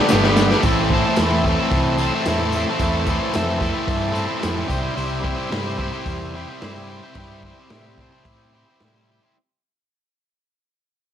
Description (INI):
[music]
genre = garage rock duo or trio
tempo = 110 BPM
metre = 4/4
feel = straight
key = unclear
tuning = A4 = 440 Hz
[part]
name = combo organ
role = sustained chords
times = 0.0-9.3 s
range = G4 to B5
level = -29 LUFS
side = left 1 dB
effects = none
[part]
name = cranked stack guitar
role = riff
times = 0.0-9.4 s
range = G2 to C5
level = -21 LUFS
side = equal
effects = overdrive
[part]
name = hollow-body short-scale picked electric bass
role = bass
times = 0.1-9.2 s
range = G1 to A2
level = -25 LUFS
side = equal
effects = none
[part]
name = raw garage drum kit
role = drums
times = 0.1-8.9 s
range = hi-hat, kick drum, snare drum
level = -23 LUFS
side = equal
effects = none
[part]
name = tambourine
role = percussion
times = 0.1-4.8 s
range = none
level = -38 LUFS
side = left 7 dB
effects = none
[sound]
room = moderate stone room reverb, RT60 1.0 s, small room reverb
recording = none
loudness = -18 LUFS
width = side -9 dB against mid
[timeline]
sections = 0.7-9.4 A section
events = drum fill 0.0-0.7; fade-out 0.7-9.4; transistor combo organ fill 3.4-5.0, 7.7-9.4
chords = 0.0 G; 0.7 Am; 4.7 C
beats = 0.11 | 0.65 1.19 1.73 2.27 | 2.81 3.35 3.90 4.44 | 4.98 5.53 6.07 6.62 | 7.17 7.71 8.26 8.81